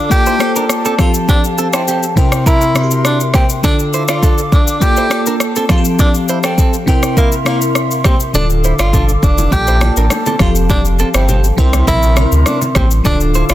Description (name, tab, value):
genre	afrobeats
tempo	102 BPM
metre	4/4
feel	straight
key	unclear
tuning	A4 = 439 Hz
part	breathy tenor saxophone	melody	0.0-13.5 s	Bb3 to G4	-19 LUFS	equal	digital delay
part	crystalline FM electric piano	accompaniment	0.0-13.5 s	C3 to D5	-18 LUFS	left 1 dB	chorus, phaser
part	mellow hollow flute section	sustained chords	0.0-13.5 s	G4 to D6	-22 LUFS	equal	none
part	afro-pop drum kit	drums	0.1-13.5 s	kick drum, rim click, shaker	-14 LUFS	equal	soft clipping on snare
part	direct-recorded clean electric guitar	riff	0.3-13.5 s	Bb3 to D5	-22 LUFS	right 5 dB	digital delay
part	warm sub bass	bass	8.3-13.5 s	D1 to D2	-13 LUFS	equal	none
part	congas and bongos	percussion	8.4-13.2 s	none	-23 LUFS	left 1 dB	none
room	light reverb, digital ambience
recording	dense, heavily limited modern master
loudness	-10 LUFS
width	side -14 dB against mid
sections	0.0-13.5 A section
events	kick muted 8.3-8.9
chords	0.1 Bbmaj7; 1.0 Fadd9; 2.2 C7; 3.6 Dm; 4.8 Bbmaj7; 5.7 Fadd9; 6.9 C7; 8.3 Dm; 9.5 Bbmaj7; 10.4 Fadd9; 11.6 C7